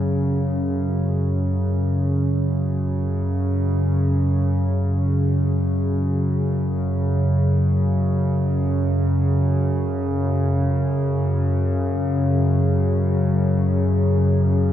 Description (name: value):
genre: world meditative, free-time meditation music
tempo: free time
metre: none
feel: none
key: unclear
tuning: A4 = 441 Hz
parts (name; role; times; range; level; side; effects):
- warbly tape-like pad; solo; 0.0-14.7 s; F#2 to C#3; -18 LUFS; equal; chorus, built-in reverb, diffuse ambient delay
room: moderate lush hall reverb, RT60 2.8 s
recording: none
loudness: -18 LUFS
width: side -11 dB against mid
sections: 0.0-14.7 A section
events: none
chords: none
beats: free time